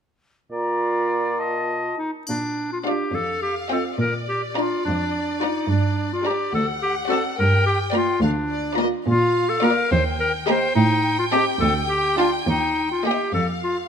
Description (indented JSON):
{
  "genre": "cinematic, playful, whimsical film cue",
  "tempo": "70 BPM (dotted quarters)",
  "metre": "6/8",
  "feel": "straight",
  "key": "Bb major",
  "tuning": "A4 = 444 Hz",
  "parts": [
    { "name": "bright clarinet", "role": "second line", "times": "0.5-13.8 s", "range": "D4 to C5", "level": "-23 LUFS", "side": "left 1 dB", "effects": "none" },
    { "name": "mellow concert flute", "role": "second line", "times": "0.5-2.0 s", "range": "A5 to Bb5", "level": "-27 LUFS", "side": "left 1 dB", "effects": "none" },
    { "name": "warm oboe", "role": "second line", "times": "0.5-2.0 s", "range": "D5 to Eb5", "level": "-28 LUFS", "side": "right 1 dB", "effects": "none" },
    { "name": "mellow bassoon", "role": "accompaniment", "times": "0.5-1.9 s", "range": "Bb2", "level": "-28 LUFS", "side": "right 2 dB", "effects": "none" },
    { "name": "warm chamber cello section", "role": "bass", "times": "2.3-13.9 s", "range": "D2 to Bb2", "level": "-24 LUFS", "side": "right 2 dB", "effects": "none" },
    { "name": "triangle", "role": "percussion", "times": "2.3-3.4 s", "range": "none", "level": "-36 LUFS", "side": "left 3 dB", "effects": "none" },
    { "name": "clear chamber violin section", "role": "second line", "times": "2.8-13.3 s", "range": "D5 to Bb5", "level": "-28 LUFS", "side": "left 1 dB", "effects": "none" },
    { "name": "clear studio viola section", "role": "accompaniment", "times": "2.9-13.3 s", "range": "Bb3 to G4", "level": "-26 LUFS", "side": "equal", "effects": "none" },
    { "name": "rich chamber violin section", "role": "melody", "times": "3.1-13.9 s", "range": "D5 to G5", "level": "-29 LUFS", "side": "left 2 dB", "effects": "none" }
  ],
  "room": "light reverb",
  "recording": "close, detailed microphones",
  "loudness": "-19 LUFS",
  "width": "side -7 dB against mid",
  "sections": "0.5-2.3 A section; 2.3-13.9 B section",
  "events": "none",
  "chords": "0.5 Bb; 3.1 Fsus2; 4.0 Bb; 5.7 Gm; 6.5 D7; 7.4 Gm7; 9.1 Bb; 9.9 Eb; 10.8 Am7b5; 11.6 Dm; 12.5 Eb; 13.3 F5"
}